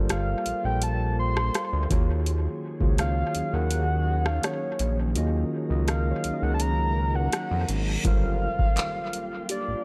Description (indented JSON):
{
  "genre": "contemporary R&B",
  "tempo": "83 BPM",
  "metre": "4/4",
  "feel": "straight",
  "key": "unclear",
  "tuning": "A4 = 438 Hz",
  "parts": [
    { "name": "mellow tine electric piano", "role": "accompaniment", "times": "0.0-9.8 s", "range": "Eb3 to Eb5", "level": "-34 LUFS", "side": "equal", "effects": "dub echo" },
    { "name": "glassy FM pad", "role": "sustained chords", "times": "0.0-9.8 s", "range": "Eb3 to Bb4", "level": "-39 LUFS", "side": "equal", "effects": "ensemble chorus, built-in reverb" },
    { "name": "fat analog bass", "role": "bass", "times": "0.0-9.8 s", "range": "G1 to F2", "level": "-28 LUFS", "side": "equal", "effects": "none" },
    { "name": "soft round pluck", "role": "texture", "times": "0.0-9.8 s", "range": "F4 to F5", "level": "-43 LUFS", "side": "equal", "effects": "none" },
    { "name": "soft octave-layered synth lead", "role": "melody", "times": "0.1-9.8 s", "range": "Db5 to C6", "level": "-33 LUFS", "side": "equal", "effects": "chorus, dub echo" },
    { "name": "booming analog drum machine", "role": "drums", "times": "0.1-9.7 s", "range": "handclaps, hi-hat, kick drum, rim click", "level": "-29 LUFS", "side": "equal", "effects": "dub echo" },
    { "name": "reverse cymbal and impact", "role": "sound effects", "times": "7.6-9.8 s", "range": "none", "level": "-40 LUFS", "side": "equal", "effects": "none" }
  ],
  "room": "little or no reverb",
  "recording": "echo-heavy mix",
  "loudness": "-26 LUFS",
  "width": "mono",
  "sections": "0.0-8.0 A section; 8.0-9.8 B section",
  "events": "kick muted 5.2-8.0; reverse cymbal 7.6-8.0; impact 8.0-9.8",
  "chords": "0.0 Gm11; 1.9 Ebm11; 8.0 Gm11",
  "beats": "0.10 0.82 1.54 | 2.27 2.99 3.71 4.43 | 5.16 5.88 6.60 7.33 | 8.05 8.77 9.49"
}